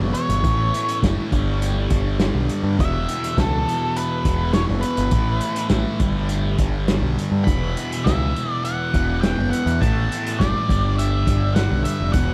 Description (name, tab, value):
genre	psychedelic rock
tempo	102 BPM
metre	4/4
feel	straight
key	unclear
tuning	A4 = 442 Hz
part	thick fuzz guitar	riff	0.0-12.3 s	E2 to A3	-27 LUFS	equal	distortion, phaser, dub echo
part	growling picked electric bass	bass	0.0-12.3 s	E1 to G2	-24 LUFS	equal	overdrive
part	octave-fuzz lead guitar	melody	0.1-12.3 s	A4 to B5	-29 LUFS	equal	distortion, dub echo
part	vintage drum kit	drums	0.1-12.3 s	hi-hat, kick drum, snare drum	-26 LUFS	equal	none
room	light reverb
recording	echo-heavy mix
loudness	-21 LUFS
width	mono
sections	0.0-12.3 A section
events	none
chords	0.4 A; 1.3 G5; 2.8 E5; 5.1 A5; 6.0 G5; 7.5 Esus2; 9.8 A5; 10.7 G5